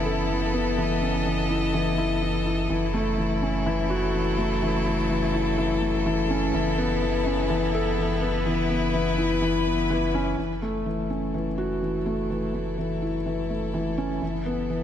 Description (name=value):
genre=piano and strings electronica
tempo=125 BPM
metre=4/4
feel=straight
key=F# dorian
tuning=A4 = 440 Hz
part: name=bright string quartet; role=sustained chords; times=0.0-14.8 s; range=C#3 to D#5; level=-30 LUFS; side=left 1 dB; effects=none
part: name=felt-muted upright piano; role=riff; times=0.0-14.8 s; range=E3 to A4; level=-25 LUFS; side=left 2 dB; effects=ping-pong delay
part: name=warm sub bass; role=bass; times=0.0-14.8 s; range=F#1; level=-30 LUFS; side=right 1 dB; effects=none
room=light reverb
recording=none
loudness=-23 LUFS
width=side -9 dB against mid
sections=0.0-10.4 A section; 10.4-14.8 B section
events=fade-in on string quartet 10.4-14.8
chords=0.0 Aadd9/F#; 2.7 F#m7; 6.5 Aadd9/F#; 10.4 F#m7; 14.2 Aadd9/F#